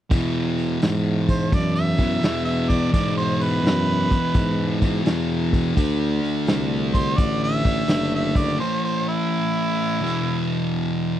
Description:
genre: blues rock power trio and southern rock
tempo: 85 BPM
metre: 4/4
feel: swing 66% on 8ths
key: unclear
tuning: A4 = 444 Hz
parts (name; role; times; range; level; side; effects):
- thick fuzz guitar; riff; 0.1-11.2 s; E2 to D4; -22 LUFS; left 1 dB; distortion
- warm tuba; bass; 0.1-8.6 s; F#1 to G#2; -25 LUFS; equal; none
- vintage drum kit; drums; 0.1-8.5 s; hi-hat, kick drum, snare drum; -21 LUFS; equal; none
- warm harmonica; melody; 1.3-10.4 s; E4 to E5; -26 LUFS; right 3 dB; overdrive, slapback echo
room: light reverb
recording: dry, close 1970s-style studio recording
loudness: -19 LUFS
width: side -11 dB against mid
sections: 0.1-11.2 A section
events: break 8.6-11.2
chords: 0.1 E; 5.8 D7; 8.6 A5; 10.0 E5

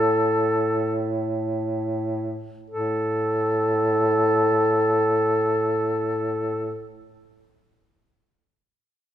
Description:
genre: caucasian folk, Caucasian lament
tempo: free time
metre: none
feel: none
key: unclear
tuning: A4 = 440 Hz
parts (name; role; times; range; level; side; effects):
- mellow duduk; melody; 0.0-6.9 s; A4; -21 LUFS; equal; none
- mellow duduk; drone; 0.0-6.9 s; A2; -26 LUFS; right 1 dB; none
room: moderate recital hall reverb, RT60 1.7 s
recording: minimal, uncompressed stereo recording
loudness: -21 LUFS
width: side -11 dB against mid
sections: 0.0-2.7 A section; 2.7-8.6 B section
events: slowing down 0.0-2.7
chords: none

